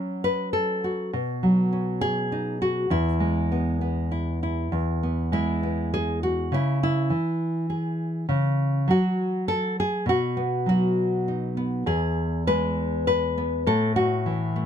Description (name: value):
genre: folk, solo fingerstyle acoustic guitar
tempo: 101 BPM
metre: 3/4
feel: straight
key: E major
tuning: A4 = 440 Hz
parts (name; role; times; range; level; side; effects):
- nylon-string guitar; solo; 0.0-14.7 s; E2 to B4; -22 LUFS; equal; none
room: little or no reverb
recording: close, detailed microphones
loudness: -22 LUFS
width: side -8 dB against mid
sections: 0.0-4.7 A section; 4.7-14.7 B section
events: none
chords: 0.0 F#m; 1.1 Badd9; 2.9 E; 6.5 C#m; 8.3 F#5/C#; 10.1 B; 11.9 E; 13.7 A5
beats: 0.54 | 1.13 1.72 2.31 | 2.91 3.50 4.11 | 4.72 5.32 5.92 | 6.51 7.10 7.70 | 8.29 8.88 9.47 | 10.07 10.66 11.26 | 11.87 12.47 13.07 | 13.66 14.26